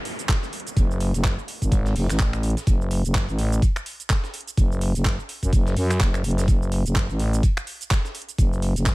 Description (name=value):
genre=bass house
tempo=126 BPM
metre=4/4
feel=swing 58% on 16ths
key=F# minor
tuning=A4 = 437 Hz
part: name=downlifter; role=sound effects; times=0.0-2.7 s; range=none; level=-38 LUFS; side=equal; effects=none
part: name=breakbeat sampler-style drum kit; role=drums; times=0.1-8.9 s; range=hi-hat, snare drum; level=-38 LUFS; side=equal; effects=sidechain pumping on hats, high-pass filter on hats, high-pass filter on snare, high-pass filter on room
part: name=garage drum kit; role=drums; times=0.1-8.9 s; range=finger snaps, handclaps, hi-hat, shaker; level=-30 LUFS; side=right 2 dB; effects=none
part: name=electronic kick drum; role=drums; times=0.3-8.9 s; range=none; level=-20 LUFS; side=equal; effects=none
part: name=growling FM bass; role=bass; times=0.8-8.9 s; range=F#1 to F#2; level=-22 LUFS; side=equal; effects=overdrive, sidechain pumping
room=little or no reverb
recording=faint mains hum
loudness=-20 LUFS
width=side -21 dB against mid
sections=0.0-8.9 A section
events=none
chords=none